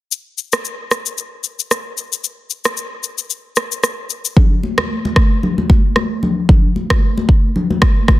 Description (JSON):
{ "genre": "afrobeats", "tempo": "113 BPM", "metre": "4/4", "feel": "swing 55% on 16ths", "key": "none", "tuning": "none", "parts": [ { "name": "afro-pop drum kit", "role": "drums", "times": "0.1-8.2 s", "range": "kick drum, rim click, shaker", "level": "-14 LUFS", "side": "equal", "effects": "soft clipping on snare" }, { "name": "congas", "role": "percussion", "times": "4.4-8.2 s", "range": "none", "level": "-18 LUFS", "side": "left 2 dB", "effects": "none" } ], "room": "digital ambience", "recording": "dense, heavily limited modern master", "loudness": "-14 LUFS", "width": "side -16 dB against mid", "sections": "0.1-4.4 A section; 4.4-8.2 B section", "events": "hi-hats muted 4.4-8.2", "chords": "none" }